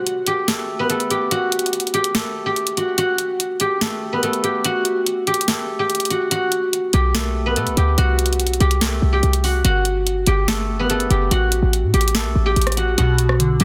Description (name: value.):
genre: hip hop, trap.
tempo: 144 BPM.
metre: 4/4.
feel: half-time.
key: unclear.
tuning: A4 = 440 Hz.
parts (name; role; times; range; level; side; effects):
guzheng; melody; 0.0-13.6 s; A3 to G5; -22 LUFS; equal; low-pass filter, digital delay.
trap drum kit; drums; 0.1-13.6 s; hi-hat, rim click, snare drum; -25 LUFS; equal; none.
short 808-style bass; bass; 6.9-13.6 s; F#1 to B2; -21 LUFS; equal; none.
glassy digital keys; accompaniment; 13.0-13.6 s; B2 to F#3; -20 LUFS; equal; chorus, low-pass filter.
room: light reverb, digital ambience.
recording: dense, heavily limited modern master.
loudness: -19 LUFS.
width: mono.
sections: 0.0-13.6 A section.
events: break 0.0-6.3; kick muted 6.3-6.7.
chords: 0.0 B5; 1.3 F#m/A; 3.0 G; 4.6 F#m/A; 6.3 Bm7; 8.0 C5; 9.6 G; 11.3 Gmaj9/A; 13.0 Bm7.